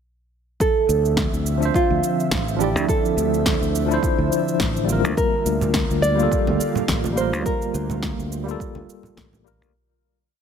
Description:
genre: sunset chillout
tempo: 105 BPM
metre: 4/4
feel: swing 56% on 16ths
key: D minor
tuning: A4 = 440 Hz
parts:
  - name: nylon-string guitar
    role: melody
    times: 0.6-8.6 s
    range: F4 to D5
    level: -24 LUFS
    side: right 3 dB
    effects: digital delay
  - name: airy breathy pad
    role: sustained chords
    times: 0.8-9.7 s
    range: D3 to E5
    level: -29 LUFS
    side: equal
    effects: chorus
  - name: electronic kick drum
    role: drums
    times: 0.6-9.3 s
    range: none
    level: -25 LUFS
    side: equal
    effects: none
  - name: electronic shaker and snare drum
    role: drums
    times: 0.6-9.7 s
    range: none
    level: -27 LUFS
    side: equal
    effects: none
  - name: fingered electric bass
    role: bass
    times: 0.9-9.7 s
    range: A1 to D2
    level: -24 LUFS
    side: equal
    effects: none
  - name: barky tine electric piano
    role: accompaniment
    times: 1.6-9.8 s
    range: F3 to E5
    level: -24 LUFS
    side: moving between left 7 dB and right 6 dB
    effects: medium stereo tremolo, auto-pan, ping-pong delay
  - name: congas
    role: percussion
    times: 5.6-9.4 s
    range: none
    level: -31 LUFS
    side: right 3 dB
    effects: none
room: light reverb, digital ambience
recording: faint mains hum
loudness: -18 LUFS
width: side -7 dB against mid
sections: 0.6-9.7 groove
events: fade-out 6.7-9.7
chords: 0.6 Dm9; 5.2 Gm9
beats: | 0.60 1.17 1.74 2.31 | 2.88 3.46 4.03 4.60 | 5.17 5.74 6.31 6.88 | 7.46 8.03 8.60 9.17

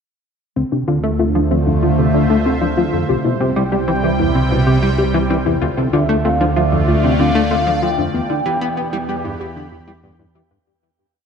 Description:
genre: ambient, sequencer-driven space music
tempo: 95 BPM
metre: 4/4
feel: straight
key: D dorian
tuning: A4 = 441 Hz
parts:
  - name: sweeping resonant pad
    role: sustained chords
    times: 0.6-10.7 s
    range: C3 to B5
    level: -19 LUFS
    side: equal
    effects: chorus, shimmer reverb
  - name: warbly dusty pluck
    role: arpeggios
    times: 0.6-10.6 s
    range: B3 to C5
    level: -22 LUFS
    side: moving between left 7 dB and right 1 dB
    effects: chorus, auto-pan, shimmer reverb, ping-pong delay
  - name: plucky analog bass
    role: riff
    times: 0.6-10.6 s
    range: C2 to B3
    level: -20 LUFS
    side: equal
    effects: wide subtle chorus, shimmer reverb, ping-pong delay
  - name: analog drone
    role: bass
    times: 1.0-10.6 s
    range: C2 to E2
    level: -22 LUFS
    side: right 1 dB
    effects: chorus
  - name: mellow horn-like synth lead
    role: melody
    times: 5.9-10.0 s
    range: E5 to G5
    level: -21 LUFS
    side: equal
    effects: wide subtle chorus, shimmer reverb, ping-pong delay
room: wet spring reverb, RT60 2.6 s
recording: echo-heavy mix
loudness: -14 LUFS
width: side -6 dB against mid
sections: 0.6-10.7 A section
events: fade-out 7.3-10.7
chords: 0.6 Dm7; 3.1 C; 5.6 Dm7; 8.1 Em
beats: | 0.56 1.19 1.83 2.46 | 3.09 3.72 4.35 4.98 | 5.62 6.25 6.88 7.51 | 8.14 8.77 9.40 10.04

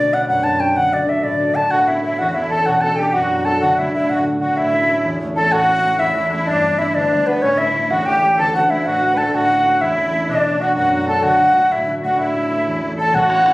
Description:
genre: celtic folk, Celtic jig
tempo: 126 BPM (dotted quarters)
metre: 6/8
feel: straight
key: A mixolydian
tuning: A4 = 440 Hz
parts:
  - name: bright reedy baroque flute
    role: melody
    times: 0.0-13.5 s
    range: B4 to A5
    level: -16 LUFS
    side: equal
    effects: none
  - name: concert harp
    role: accompaniment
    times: 0.0-13.5 s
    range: D2 to B4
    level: -21 LUFS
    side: equal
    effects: none
  - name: musette accordion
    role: second line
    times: 1.7-13.5 s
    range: B3 to B4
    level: -23 LUFS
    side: left 1 dB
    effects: none
  - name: bodhran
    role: percussion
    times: 13.1-13.5 s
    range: none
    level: -25 LUFS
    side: equal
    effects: none
room: moderate studio reverb, RT60 0.5 s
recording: recorded on a phone in the room, studio reverb, compression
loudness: -14 LUFS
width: side -19 dB against mid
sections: 0.0-5.5 A section; 5.5-13.1 B section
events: none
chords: 0.0 Bmadd9; 0.8 D; 1.7 Aadd9; 2.7 Bm; 3.6 D; 4.6 A; 6.5 G; 7.4 A; 8.4 D; 9.3 A; 10.3 Bmadd9; 11.2 D; 12.2 A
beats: 0.28 | 0.76 1.24 | 1.71 2.19 | 2.67 3.14 | 3.62 4.09 | 4.57 5.05 | 5.52 6.00 | 6.47 6.95 | 7.43 7.90 | 8.38 8.85 | 9.33 9.80 | 10.28 10.76 | 11.23 11.71 | 12.18 12.66 | 13.13

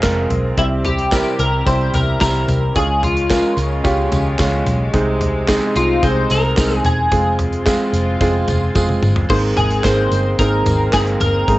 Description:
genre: piano-driven pop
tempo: 110 BPM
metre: 4/4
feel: straight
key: Ab major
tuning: A4 = 440 Hz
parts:
  - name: clear concert grand piano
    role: accompaniment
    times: 0.0-11.6 s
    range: Ab2 to Bb4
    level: -19 LUFS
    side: right 2 dB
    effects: cassette tape
  - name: dark studio string section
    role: sustained chords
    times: 0.0-11.6 s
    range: C3 to G4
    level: -26 LUFS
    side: left 1 dB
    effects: cassette tape
  - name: vintage muted picked electric bass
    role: bass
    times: 0.0-11.6 s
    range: Fb1 to Db2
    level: -19 LUFS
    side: equal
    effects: none
  - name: modern studio drum kit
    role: drums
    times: 0.0-11.6 s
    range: crash cymbal, handclaps, hi-hat, kick drum, snare drum, toms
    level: -21 LUFS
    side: equal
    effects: none
  - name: twelve-string electric guitar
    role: melody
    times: 0.6-11.6 s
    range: E4 to C5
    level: -20 LUFS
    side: left 1 dB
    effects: analog chorus, cassette tape
  - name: tambourine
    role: percussion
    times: 1.1-11.3 s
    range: none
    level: -34 LUFS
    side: right 4 dB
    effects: none
room: light reverb, small room reverb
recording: home recording on cassette, nothing above 8.0 kHz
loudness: -14 LUFS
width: side -17 dB against mid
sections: 0.0-9.3 A section; 9.3-11.6 B section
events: drum fill 8.8-9.3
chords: 0.0 Fm; 0.6 C; 2.8 Db; 4.9 Ab/C; 7.1 Fm; 9.3 Abadd9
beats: 0.03 | 0.58 1.12 1.67 2.21 | 2.76 3.30 3.85 4.39 | 4.94 5.48 6.03 6.58 | 7.12 7.67 8.21 8.76 | 9.30 9.85 10.39 10.93 | 11.48

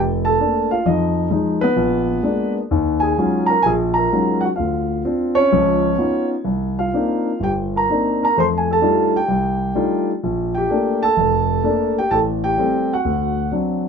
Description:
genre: solo jazz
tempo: 128 BPM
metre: 4/4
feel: swing 69% on 8ths, rubato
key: Bb major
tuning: A4 = 440 Hz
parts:
  - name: dark concert grand piano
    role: solo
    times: 0.0-13.9 s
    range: F1 to C6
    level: -16 LUFS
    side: equal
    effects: none
room: little or no reverb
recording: close, detailed microphones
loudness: -16 LUFS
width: side -6 dB against mid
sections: 0.0-13.9 A section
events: none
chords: 0.0 Bbmaj7; 0.9 Fm7b5; 1.8 Bb7b9; 2.7 Ebm11; 4.6 Dmmaj7; 5.5 Db9; 6.5 Cm9; 8.4 F13; 10.2 Bbmaj7; 12.1 Am7; 13.1 D7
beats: 0.39 | 0.85 1.32 1.78 2.25 | 2.71 3.18 3.65 4.11 | 4.58 5.05 5.52 6.00 | 6.47 6.95 7.42 7.89 | 8.37 8.83 9.30 9.77 | 10.24 10.71 11.17 11.64 | 12.11 12.58 13.05 13.53

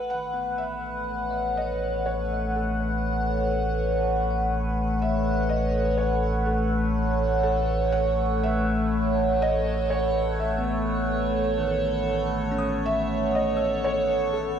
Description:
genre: ambient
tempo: 61 BPM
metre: 4/4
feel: straight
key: A lydian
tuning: A4 = 440 Hz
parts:
  - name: felt-muted upright piano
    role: melody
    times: 0.0-14.6 s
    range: A4 to F#5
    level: -32 LUFS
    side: left 1 dB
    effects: cassette tape, tape echo
  - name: evolving wavetable pad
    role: sustained chords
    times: 0.0-14.6 s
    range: A3 to F#5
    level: -24 LUFS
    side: right 1 dB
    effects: phaser, built-in reverb, cassette tape
  - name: warm sub bass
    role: bass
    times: 0.0-14.6 s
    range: A1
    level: -29 LUFS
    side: equal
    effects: none
  - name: bell-like tine electric piano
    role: arpeggios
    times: 0.1-14.6 s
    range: D#3 to E6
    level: -37 LUFS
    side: left 1 dB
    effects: cassette tape, tape echo
room: wet studio reverb, RT60 0.6 s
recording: home recording on cassette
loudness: -23 LUFS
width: side -8 dB against mid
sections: 0.0-14.6 A section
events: fade-in on tine electric piano 0.0-14.6; fade-in on felt piano 0.0-14.6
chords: 0.0 A6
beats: 0.59 1.57 2.56 | 3.54 4.52 5.50 6.49 | 7.47 8.46 9.44 10.42 | 11.41 12.39 13.37 14.36

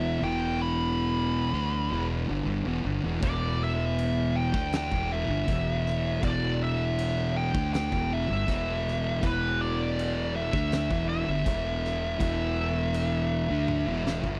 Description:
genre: stoner and doom metal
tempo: 80 BPM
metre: 4/4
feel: straight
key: E minor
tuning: A4 = 440 Hz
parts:
  - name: fuzz lead guitar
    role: melody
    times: 0.0-14.4 s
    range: B4 to B5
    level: -34 LUFS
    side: equal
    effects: wah, distortion, slapback echo
  - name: percussive tonewheel organ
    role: sustained chords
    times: 0.0-14.4 s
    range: E3 to B3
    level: -45 LUFS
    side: equal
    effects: none
  - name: thick fuzz guitar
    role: riff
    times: 0.0-14.4 s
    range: E2 to D4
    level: -34 LUFS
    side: equal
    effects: distortion
  - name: thick fuzz guitar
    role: riff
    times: 0.0-14.4 s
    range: E2 to D4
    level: -34 LUFS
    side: equal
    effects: distortion
  - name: fuzz fingered electric bass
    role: bass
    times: 0.0-14.4 s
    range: E1 to D2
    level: -34 LUFS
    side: equal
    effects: overdrive
  - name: oversized low-tuned drum kit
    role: drums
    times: 3.2-14.4 s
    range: crash cymbal, kick drum, snare drum, toms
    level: -36 LUFS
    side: equal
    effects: none
room: little or no reverb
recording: dry, close 1970s-style studio recording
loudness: -28 LUFS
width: mono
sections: 0.0-14.4 A section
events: drum fill 13.7-14.4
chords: 0.0 Em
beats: | 0.23 0.98 1.73 2.48 | 3.23 3.98 4.73 5.48 | 6.23 6.98 7.73 8.48 | 9.22 9.97 10.71 11.46 | 12.20 12.94 13.68

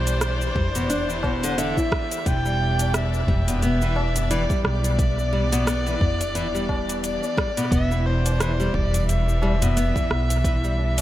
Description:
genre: organic downtempo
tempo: 88 BPM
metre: 4/4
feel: swing 57% on 16ths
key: E minor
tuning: A4 = 440 Hz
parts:
  - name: warm kamancheh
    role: melody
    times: 0.0-11.0 s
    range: C5 to G5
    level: -28 LUFS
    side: equal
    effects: dub echo
  - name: rich symphonic string section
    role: sustained chords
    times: 0.0-11.0 s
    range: E3 to D5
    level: -32 LUFS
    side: left 1 dB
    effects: sidechain pumping
  - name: nylon-string guitar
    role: arpeggios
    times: 0.0-11.0 s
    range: B2 to E4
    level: -27 LUFS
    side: left 1 dB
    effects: tape echo
  - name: upright bass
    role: bass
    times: 0.0-11.0 s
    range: E1 to B1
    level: -24 LUFS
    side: equal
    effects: sidechain pumping
  - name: deep house drum kit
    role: drums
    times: 0.1-11.0 s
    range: cabasa, hi-hat, rim click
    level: -29 LUFS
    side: equal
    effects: small room ambience, analog delay
  - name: electronic kick drum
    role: drums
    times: 0.6-10.6 s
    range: none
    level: -25 LUFS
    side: equal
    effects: small room ambience
  - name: tabla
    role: percussion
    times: 0.6-11.0 s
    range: none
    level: -30 LUFS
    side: left 1 dB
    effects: analog delay
room: light reverb, studio reverb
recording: echo-heavy mix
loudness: -20 LUFS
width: side -14 dB against mid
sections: 0.0-11.0 A section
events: none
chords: 0.0 Cadd9/E; 2.3 Em7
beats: 0.22 0.90 1.58 | 2.26 2.95 3.63 4.31 | 4.99 5.67 6.36 7.04 | 7.72 8.40 9.08 9.76 | 10.45

